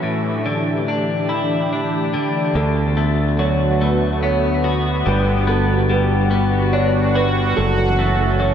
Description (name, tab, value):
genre	rock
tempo	48 BPM (dotted quarters)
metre	6/8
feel	straight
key	unclear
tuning	A4 = 440 Hz
part	sweeping resonant pad	sustained chords	0.0-8.5 s	D3 to G4	-22 LUFS	right 1 dB	chorus
part	twelve-string electric guitar	arpeggios	0.0-8.5 s	A2 to F#4	-20 LUFS	left 3 dB	wide subtle chorus, tape echo
part	felt-muted upright piano	arpeggios	2.6-8.5 s	A4 to C#5	-24 LUFS	right 3 dB	analog chorus, tape echo
part	growling fingered electric bass	bass	2.6-8.5 s	F#1 to D2	-19 LUFS	right 1 dB	overdrive
room	wet cathedral reverb, RT60 5.0 s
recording	dreamy mix soaked in reverb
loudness	-16 LUFS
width	side -8 dB against mid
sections	0.0-2.6 A section; 2.6-8.5 B section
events	none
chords	0.0 A7sus4; 2.6 D6; 5.1 Gmaj7; 7.6 F#m7